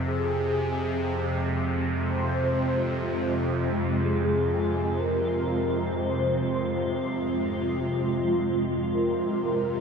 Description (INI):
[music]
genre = dark ambient drone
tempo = 61 BPM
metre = 4/4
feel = straight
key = F minor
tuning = A4 = 440 Hz
[part]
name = bowed-like drone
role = drone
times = 0.0-9.8 s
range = F2 to C3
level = -27 LUFS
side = right 1 dB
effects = built-in reverb, phaser
[part]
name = mellow horn-like synth lead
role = melody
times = 0.1-9.8 s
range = Ab4 to C5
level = -30 LUFS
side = equal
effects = ensemble chorus, diffuse ambient delay
[part]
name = granular cloud pad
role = sustained chords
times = 1.4-9.8 s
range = Ab3 to F4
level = -29 LUFS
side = equal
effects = built-in reverb
[sound]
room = wet huge ambient reverb, RT60 8.1 s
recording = none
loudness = -24 LUFS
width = side -6 dB against mid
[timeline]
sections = 0.0-7.9 A section; 7.9-9.8 B section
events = none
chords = 0.0 Fm